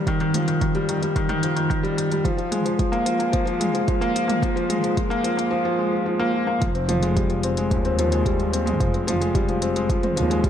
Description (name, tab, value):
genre	piano and strings electronica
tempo	110 BPM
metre	4/4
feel	straight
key	unclear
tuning	A4 = 442 Hz
part	felt-muted upright piano	riff	0.0-10.5 s	Eb3 to C4	-21 LUFS	left 1 dB	ping-pong delay
part	electronic kick drum	drums	0.1-10.5 s	none	-24 LUFS	right 1 dB	overdrive
part	organic electronic drum kit	drums	0.1-10.5 s	hi-hat, toms	-30 LUFS	right 2 dB	none
part	clear studio double bass section	bass	6.6-10.5 s	F1 to Eb2	-25 LUFS	equal	sidechain pumping
room	moderate lush hall reverb, RT60 1.9 s, small room ambience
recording	none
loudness	-20 LUFS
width	side -9 dB against mid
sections	0.0-6.6 A section; 6.6-10.5 B section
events	build-up 0.0-6.6; drop 6.6-10.5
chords	0.0 Ebadd9; 2.2 Bb5; 6.6 Fmadd9